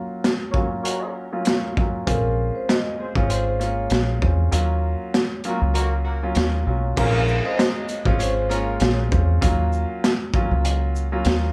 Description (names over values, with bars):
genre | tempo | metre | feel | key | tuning
hip hop, boom-bap hip-hop | 98 BPM | 4/4 | swing 56% on 16ths | Bb minor | A4 = 439 Hz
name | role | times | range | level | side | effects
dark concert grand piano | accompaniment | 0.0-11.5 s | Gb3 to F4 | -29 LUFS | equal | cassette tape, high-pass filter, low-pass filter
crunchy breakbeat drum kit | drums | 0.2-11.4 s | crash cymbal, hi-hat, kick drum, shaker, snare drum | -25 LUFS | equal | none
mellow horn section | stabs | 0.5-8.7 s | Bb3 to Eb5 | -33 LUFS | equal | high-pass filter, low-pass filter, digital delay
vibraphone with soft mallets | melody | 2.1-9.0 s | Bb4 to Eb5 | -30 LUFS | equal | high-pass filter, low-pass filter, plate reverb, digital delay
deep dub fingered electric bass | bass | 2.1-11.5 s | Ab1 to E2 | -24 LUFS | equal | none
room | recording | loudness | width
light reverb | none | -22 LUFS | mono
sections
0.0-7.0 A section; 7.0-11.5 B section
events
filter sweep 0.0-7.0; kick muted 4.5-7.0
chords
0.0 Gbmaj7; 2.1 Bbm9; 4.5 Ebm9; 7.0 Bbm9; 9.4 Ebm9